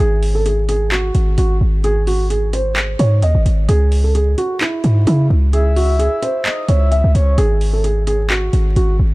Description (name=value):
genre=hip hop, trap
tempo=130 BPM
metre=4/4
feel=half-time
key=C# harmonic minor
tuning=A4 = 439 Hz
part: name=felt-muted upright piano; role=melody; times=0.0-8.9 s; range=E4 to E5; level=-20 LUFS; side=right 2 dB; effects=tape echo
part: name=hard-hitting 808-style bass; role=bass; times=0.0-9.1 s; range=G#1 to C#3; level=-14 LUFS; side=equal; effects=none
part: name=trap drum kit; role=drums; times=0.2-8.9 s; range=handclaps, hi-hat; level=-24 LUFS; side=equal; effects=none
part: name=breathy flute-like synth lead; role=second line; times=5.5-7.4 s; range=C#5 to E5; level=-24 LUFS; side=left 2 dB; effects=chorus, tape echo
room=little or no reverb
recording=dark, warm production, vinyl crackle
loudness=-13 LUFS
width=side -21 dB against mid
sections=0.0-9.1 A section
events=none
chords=0.0 N.C.; 3.7 C#m; 7.4 N.C.